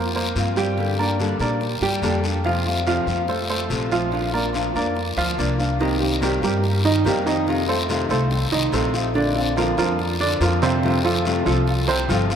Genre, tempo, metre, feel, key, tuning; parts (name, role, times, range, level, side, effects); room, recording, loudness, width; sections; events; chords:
latin, Cuban son and guajira; 143 BPM; 4/4; straight; Bb major; A4 = 439 Hz
clear baby grand piano; arpeggios; 0.0-12.4 s; C3 to G5; -22 LUFS; right 3 dB
upright bass; bass; 0.0-12.4 s; G1 to Bb2; -25 LUFS; equal
nylon-string guitar; accompaniment; 0.4-12.4 s; C3 to A4; -25 LUFS; left 4 dB
guiro; percussion; 0.4-12.4 s; -30 LUFS; left 4 dB
wet cathedral reverb, RT60 6.6 s; in a vast, echoing space; -19 LUFS; side -8 dB against mid
0.0-5.8 A section; 5.8-12.4 B section
0.0 Bbsus2; 0.8 Gmadd9; 2.4 F; 4.1 Bb; 5.8 Cm7; 7.5 F7; 9.2 Bbadd9; 10.8 F